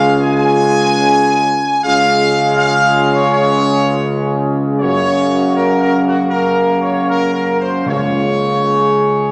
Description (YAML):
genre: classical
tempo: 75-82 BPM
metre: 4/4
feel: straight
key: Db major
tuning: A4 = 443 Hz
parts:
  - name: bright trumpet section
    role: melody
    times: 0.0-9.3 s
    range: Gb4 to Ab5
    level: -17 LUFS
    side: equal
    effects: none
  - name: warm French horn section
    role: sustained chords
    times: 0.0-9.3 s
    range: Db4 to Ab4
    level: -23 LUFS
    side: equal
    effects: none
  - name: warm trombone section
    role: sustained chords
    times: 0.0-9.3 s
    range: Db3 to Bb3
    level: -20 LUFS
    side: equal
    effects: none
  - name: clear tuba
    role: bass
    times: 0.0-9.3 s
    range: Db2 to Gb2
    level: -21 LUFS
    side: equal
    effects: none
  - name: timpani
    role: percussion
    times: 7.9-9.0 s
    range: Db3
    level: -28 LUFS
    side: equal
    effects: none
room: wet scoring stage reverb, RT60 1.7 s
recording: none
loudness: -14 LUFS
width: mono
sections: 0.0-9.3 A section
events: none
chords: 0.0 Db; 4.8 Gb; 7.9 Db